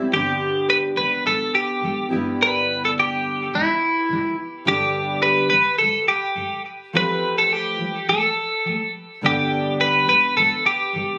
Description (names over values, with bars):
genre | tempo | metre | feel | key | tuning
pop | 105 BPM | 4/4 | straight | G mixolydian | A4 = 440 Hz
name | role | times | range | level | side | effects
fingerpicked steel-string acoustic guitar | accompaniment | 0.0-11.2 s | G2 to G4 | -28 LUFS | equal | double-tracked
twelve-string electric guitar | melody | 0.1-11.2 s | E4 to B4 | -21 LUFS | equal | delay
room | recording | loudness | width
moderate studio reverb, RT60 0.5 s | recorded on a phone in the room, club reverb | -20 LUFS | mono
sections
0.1-11.2 A section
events
none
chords
0.1 G; 2.1 Em7/G; 4.7 G; 7.0 Fadd9; 9.2 G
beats
| 0.11 0.68 1.25 1.82 | 2.39 2.96 3.53 4.10 | 4.67 5.24 5.81 6.38 | 6.95 7.52 8.09 8.66 | 9.23 9.80 10.37 10.94